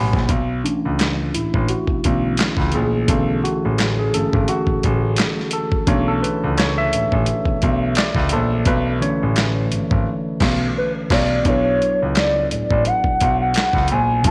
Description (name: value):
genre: R&B, neo-soul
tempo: 86 BPM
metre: 4/4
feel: swing 58% on 16ths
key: B dorian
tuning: A4 = 444 Hz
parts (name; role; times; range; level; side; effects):
- tine electric piano; accompaniment; 0.0-14.3 s; B2 to B5; -24 LUFS; equal; none
- warm concert grand piano; bass; 0.0-14.3 s; G#1 to C#2; -24 LUFS; equal; none
- dusty soul sampler-style drum kit; drums; 0.1-14.3 s; crash cymbal, handclaps, hi-hat, kick drum, snare drum; -23 LUFS; equal; overdrive
- gliding portamento lead; melody; 10.8-14.3 s; B4 to A5; -21 LUFS; equal; chorus
room: moderate echo chamber reverb, RT60 2.0 s, digital ambience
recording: none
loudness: -19 LUFS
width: mono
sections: 0.3-11.5 A section; 11.5-14.3 B section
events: tine electric piano fill 0.0; tine electric piano solo 0.3-11.5; drums muted 10.1-11.5; band accent 10.1-11.5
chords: 0.3 Bm11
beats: | 0.29 0.99 1.69 2.38 | 3.08 3.78 4.48 5.17 | 5.87 6.57 7.27 7.96 | 8.66 9.36 10.06 10.76 | 11.45 12.15 12.85 13.55 | 14.24